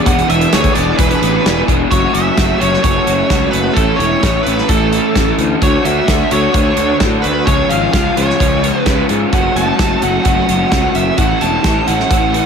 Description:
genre	rock, shoegaze and dream pop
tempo	130 BPM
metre	4/4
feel	straight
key	unclear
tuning	A4 = 439 Hz
part	nasal lead guitar with a parked wah	melody	0.0-12.5 s	A4 to A5	-17 LUFS	right 2 dB	overdrive, slapback echo
part	crunchy overdriven guitar	riff	0.0-12.5 s	A2 to G#4	-15 LUFS	left 1 dB	ensemble chorus
part	fuzz fingered electric bass	bass	0.1-12.4 s	E1 to A2	-18 LUFS	equal	overdrive
part	loose indie drum kit	drums	0.1-12.4 s	hi-hat, kick drum, snare drum	-17 LUFS	equal	none
room	light reverb, small room ambience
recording	none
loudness	-11 LUFS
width	side -6 dB against mid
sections	0.0-1.9 A section; 1.9-12.5 B section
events	none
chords	0.0 E7; 1.9 F#m7; 3.8 A; 5.6 Dmaj7; 7.5 C#; 9.3 F#m; 11.2 A6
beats	| 0.06 0.52 0.98 1.44 | 1.91 2.37 2.83 3.30 | 3.76 4.22 4.69 5.15 | 5.61 6.08 6.54 7.01 | 7.47 7.93 8.40 8.86 | 9.32 9.79 10.25 10.71 | 11.18 11.64 12.10

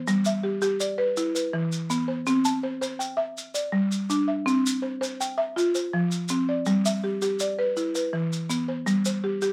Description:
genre	southern african traditional, mbira-style interlocking cycle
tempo	109 BPM (dotted quarters)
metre	12/8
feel	straight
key	G mixolydian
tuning	A4 = 440 Hz
part	buzzing marimba with medium mallets	arpeggios	0.0-9.5 s	E3 to A5	-26 LUFS	equal	none
part	maracas	percussion	0.1-9.5 s	none	-35 LUFS	equal	none
room	moderate studio reverb, RT60 0.5 s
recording	none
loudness	-26 LUFS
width	mono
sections	0.0-8.9 A section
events	none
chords	0.1 G; 1.2 E5; 2.3 C; 3.4 G5; 4.5 C; 5.6 F5; 6.7 G; 7.8 E5; 8.9 N.C.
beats	| 0.07 0.61 1.17 1.72 | 2.27 2.81 3.36 3.91 | 4.46 5.01 5.57 6.12 | 6.67 7.22 7.77 8.32 | 8.87 9.42

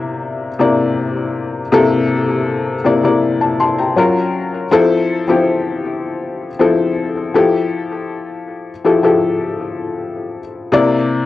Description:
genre	R&B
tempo	80 BPM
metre	4/4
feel	straight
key	F major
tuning	A4 = 437 Hz
part	felt-muted upright piano	solo	0.0-11.3 s	C3 to C6	-14 LUFS	left 3 dB	cassette tape, analog delay
room	moderate spring reverb, RT60 1.1 s, studio reverb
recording	home recording on cassette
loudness	-13 LUFS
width	side -14 dB against mid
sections	0.0-10.7 A section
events	none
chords	0.0 C9; 4.0 Gbmaj7; 4.7 Fmaj7; 7.3 Fmaj9; 10.7 C9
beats	0.23 0.97 | 1.73 2.48 3.23 3.98 | 4.72 5.47 6.22 6.97 | 7.72 8.47 9.22 9.97 | 10.72

